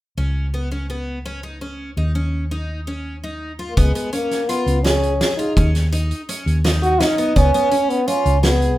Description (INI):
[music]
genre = progressive instrumental, band music in an uneven meter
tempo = 167 BPM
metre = 5/4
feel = straight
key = unclear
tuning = A4 = 441 Hz
[part]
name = picked twelve-string acoustic guitar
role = arpeggios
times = 0.2-8.7 s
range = B3 to G#4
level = -26 LUFS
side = left 1 dB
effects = none
[part]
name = hollow-body short-scale fingered electric bass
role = bass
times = 0.2-8.8 s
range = C#2 to D#2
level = -20 LUFS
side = equal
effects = none
[part]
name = warm French horn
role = melody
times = 3.7-8.8 s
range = G#3 to F#4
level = -19 LUFS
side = equal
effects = none
[part]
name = oversized low-tuned drum kit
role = drums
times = 3.8-8.7 s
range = hi-hat, kick drum, snare drum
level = -21 LUFS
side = equal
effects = none
[sound]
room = moderate studio reverb, RT60 0.6 s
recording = rough home demo mix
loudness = -17 LUFS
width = side -15 dB against mid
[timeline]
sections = 0.2-3.8 A section; 3.8-8.8 B section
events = none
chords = 0.2 Bsus2/C#; 2.0 A#madd11/D# (rootless); 3.8 C#7; 5.6 D#7(no3); 7.4 C#7